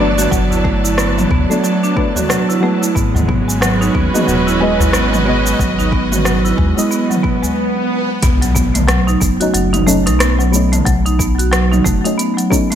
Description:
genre	organic downtempo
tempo	91 BPM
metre	4/4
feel	swing 59% on 16ths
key	B mixolydian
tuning	A4 = 441 Hz
part	deep mellow chord stab	accompaniment	0.0-12.8 s	F#3 to D#5	-20 LUFS	left 1 dB	chorus, sidechain pumping, tape echo
part	rich studio string section	sustained chords	0.0-7.6 s	E3 to A5	-20 LUFS	right 2 dB	sidechain pumping
part	marimba with medium hard mallets	arpeggios	0.0-12.8 s	F#3 to F#4	-17 LUFS	right 2 dB	tape echo
part	smooth synth bass	bass	0.0-12.0 s	D#1 to D#2	-18 LUFS	left 1 dB	none
part	organic electronic drum kit	drums	0.2-12.8 s	hi-hat, rim click, shaker, toms	-19 LUFS	equal	overdrive
part	electronic kick drum	drums	0.3-12.7 s	none	-19 LUFS	left 1 dB	overdrive
part	udu	percussion	0.5-7.5 s	none	-21 LUFS	left 2 dB	none
part	swell and impact	sound effects	7.2-10.9 s	none	-22 LUFS	equal	none
room	light reverb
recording	none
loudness	-12 LUFS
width	side -9 dB against mid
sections	0.0-8.2 A section; 8.2-12.8 B section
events	swell 7.2-8.2; stop 7.6-8.2; impact 8.2-10.9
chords	0.0 Gmaj7; 3.0 Emaj7; 8.2 B7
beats	| 0.32 0.98 1.64 2.30 | 2.96 3.61 4.27 4.93 | 5.59 6.25 6.91 7.57 | 8.23 8.89 9.55 10.21 | 10.87 11.53 12.19

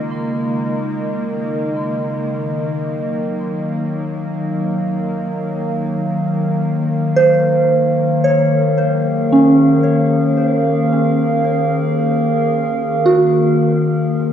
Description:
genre	ambient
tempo	55 BPM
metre	3/4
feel	straight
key	Eb dorian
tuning	A4 = 435 Hz
part	warbly tape-like pad	sustained chords	0.0-14.3 s	Db3 to C6	-17 LUFS	left 1 dB	chorus, built-in reverb
part	soft synth bell	arpeggios	0.0-14.3 s	Db4 to C6	-16 LUFS	right 2 dB	chorus, phaser, tape echo
part	bowed-like drone	drone	0.0-14.3 s	Eb3 to Bb3	-27 LUFS	equal	built-in reverb
room	wet concert hall reverb, RT60 1.9 s, digital ambience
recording	studio ambience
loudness	-14 LUFS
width	side -9 dB against mid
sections	0.0-14.3 A section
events	fade-in on synth bell 0.0-14.3; fade-out on synth drone 0.0-14.3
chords	0.0 Dbmaj7; 2.3 Ebm7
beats	0.09 1.18 | 2.27 3.37 4.46 | 5.55 6.63 7.71 | 8.78 9.85 10.91 | 11.98 13.06 14.16

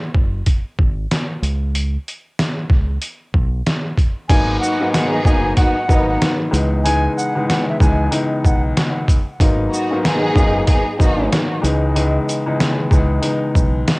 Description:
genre	hip hop, boom-bap hip-hop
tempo	94 BPM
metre	4/4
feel	swing 62% on 16ths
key	G# minor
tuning	A4 = 440 Hz
part	deep dub fingered electric bass	bass	0.1-13.8 s	F#1 to C#2	-20 LUFS	equal	none
part	trip hop sampler-style drum kit	drums	0.1-14.0 s	crash cymbal, hi-hat, kick drum, shaker, snare drum	-16 LUFS	equal	cassette tape
part	reedy concert flute	melody	4.3-8.6 s	D#5 to G#5	-23 LUFS	equal	high-pass filter, low-pass filter, cassette tape, analog delay
part	warm upright piano	accompaniment	4.3-14.0 s	C#2 to D#4	-19 LUFS	left 1 dB	cassette tape, high-pass filter, low-pass filter
part	warm symphonic string section	stabs	4.6-11.3 s	D#3 to G#4	-22 LUFS	equal	high-pass filter, low-pass filter, cassette tape, analog delay
room	light reverb, studio reverb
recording	home recording on cassette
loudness	-15 LUFS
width	side -25 dB against mid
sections	0.0-4.3 A section; 4.3-14.0 B section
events	break 0.0-4.3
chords	0.0 F#sus2; 1.4 Bsus2; 4.3 G#m9; 6.5 C#m9; 9.4 G#m9; 11.6 C#m9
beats	0.46 1.10 | 1.74 2.38 3.02 3.66 | 4.29 4.93 5.57 6.21 | 6.85 7.49 8.12 8.76 | 9.40 10.04 10.68 11.31 | 11.95 12.59 13.23 13.87

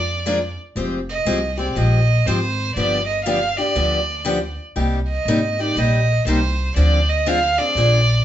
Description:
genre	acoustic string swing (jazz manouche)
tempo	120 BPM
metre	4/4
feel	swing 64% on 8ths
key	C minor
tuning	A4 = 440 Hz
part	warm violin	melody	0.0-8.2 s	C5 to F5	-21 LUFS	right 2 dB	none
part	upright bass	bass	0.0-8.2 s	F1 to F2	-20 LUFS	equal	none
part	picked steel-string acoustic guitar	accompaniment	0.3-8.0 s	C3 to Bb4	-22 LUFS	left 2 dB	none
room	wet studio reverb, RT60 0.6 s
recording	band playing live in one room, nothing above 7.8 kHz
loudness	-17 LUFS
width	side -11 dB against mid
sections	0.0-8.2 A section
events	none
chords	0.0 Bb7; 0.8 Fmadd9; 2.8 G7; 4.8 Cm7; 6.8 Dm7b5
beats	0.26 | 0.76 1.26 1.76 2.26 | 2.76 3.26 3.76 4.26 | 4.76 5.26 5.76 6.26 | 6.76 7.26 7.76

